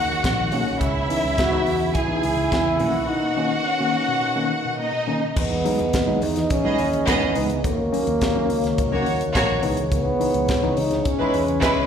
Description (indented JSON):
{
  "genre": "disco",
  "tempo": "106 BPM",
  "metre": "4/4",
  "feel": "straight",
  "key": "C# dorian",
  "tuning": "A4 = 440 Hz",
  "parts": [
    { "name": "breathy trombone", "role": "melody", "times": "0.0-11.9 s", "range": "A#3 to F#4", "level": "-24 LUFS", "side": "equal", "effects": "plate reverb, slapback echo" },
    { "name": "warm studio violin section", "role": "second line", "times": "0.0-11.9 s", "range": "G#3 to G#5", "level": "-23 LUFS", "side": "right 1 dB", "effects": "plate reverb, slapback echo" },
    { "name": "mellow French horn section", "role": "sustained chords", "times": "0.0-11.9 s", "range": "C#3 to D#5", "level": "-29 LUFS", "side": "left 1 dB", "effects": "plate reverb" },
    { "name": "picked electric bass", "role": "bass", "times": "0.0-11.9 s", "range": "A#1 to E2", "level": "-27 LUFS", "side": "right 1 dB", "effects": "none" },
    { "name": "tine electric piano", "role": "accompaniment", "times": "0.1-11.9 s", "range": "B2 to D#4", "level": "-27 LUFS", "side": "left 3 dB", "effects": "overdrive, fast stereo tremolo, plate reverb, slapback echo" },
    { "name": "tight funk drum kit", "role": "drums", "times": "0.2-11.8 s", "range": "crash cymbal, hi-hat, kick drum, snare drum", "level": "-26 LUFS", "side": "equal", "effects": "none" }
  ],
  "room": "moderate club reverb, RT60 0.6 s",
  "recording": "live gig heard through the venue's PA, recital hall reverb",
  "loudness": "-19 LUFS",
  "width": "side -8 dB against mid",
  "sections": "0.0-5.4 A section; 5.4-11.9 B section",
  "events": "none",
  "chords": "0.0 D#m7; 0.8 C#m7; 2.8 Bmaj9; 5.4 Emaj7; 7.6 D#m7; 9.6 C#m7",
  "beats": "0.24 | 0.81 1.38 1.95 2.52 | 3.09 3.66 4.23 4.80 | 5.37 5.94 6.51 7.08 | 7.64 8.21 8.78 9.35 | 9.92 10.48 11.05 11.62"
}